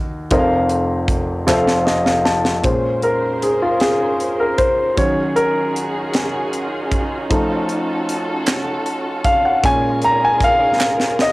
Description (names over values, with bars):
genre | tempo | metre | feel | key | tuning
slow gospel | 52 BPM (dotted quarters) | 6/8 | straight | Bb minor | A4 = 440 Hz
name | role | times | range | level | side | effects
warm grand piano | accompaniment | 0.0-11.3 s | F1 to Bb5 | -16 LUFS | left 1 dB | cassette tape
crisp fusion drum kit | drums | 0.3-11.3 s | hi-hat, kick drum, snare drum | -21 LUFS | equal | cassette tape
group handclap | percussion | 1.5-1.8, 8.5-11.2 s | none | -21 LUFS | right 4 dB | none
muted studio string section | sustained chords | 2.6-11.3 s | Db4 to C5 | -23 LUFS | right 1 dB | cassette tape
room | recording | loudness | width
light reverb | home recording on cassette | -15 LUFS | side -20 dB against mid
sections
0.0-2.6 A section; 2.6-11.3 B section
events
drum fill 1.5-2.6, 10.8-11.3; grand piano fill 1.5-2.6; grand piano solo 2.6-11.3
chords
0.3 Fsus4; 1.5 F; 2.6 Bbm9; 5.0 Ebm11; 7.3 F7b9b13; 9.6 Bbm7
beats
| 0.32 1.48 | 2.65 3.81 | 4.98 6.14 | 7.31 8.47 | 9.64 10.81